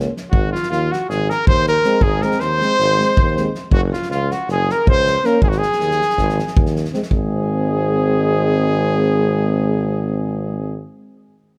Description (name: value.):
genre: balkan folk, Balkan brass band.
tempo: 318 BPM (eighths).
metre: 9/8.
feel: straight.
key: Ab mixolydian.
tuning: A4 = 440 Hz.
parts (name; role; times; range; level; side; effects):
dark euphonium; accompaniment; 0.0-10.8 s; Ab3 to Bb3; -26 LUFS; equal; none.
mellow trombone; accompaniment; 0.0-10.8 s; C4 to Db4; -28 LUFS; equal; none.
warm tuba; bass; 0.0-10.8 s; Gb1 to Eb2; -23 LUFS; equal; none.
natural country drum kit; percussion; 0.0-7.3 s; kick drum, snare drum; -22 LUFS; equal; none.
clear cornet; melody; 0.3-10.8 s; F4 to C5; -23 LUFS; equal; none.
warm flugelhorn; second line; 0.3-10.8 s; F4 to C5; -27 LUFS; equal; none.
room: light reverb.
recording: close, detailed microphones.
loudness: -17 LUFS.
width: mono.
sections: 0.0-7.1 A section; 7.1-10.5 B section.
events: none.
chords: 0.3 Ab; 3.7 Gb; 5.4 Ab5; 7.1 Ab.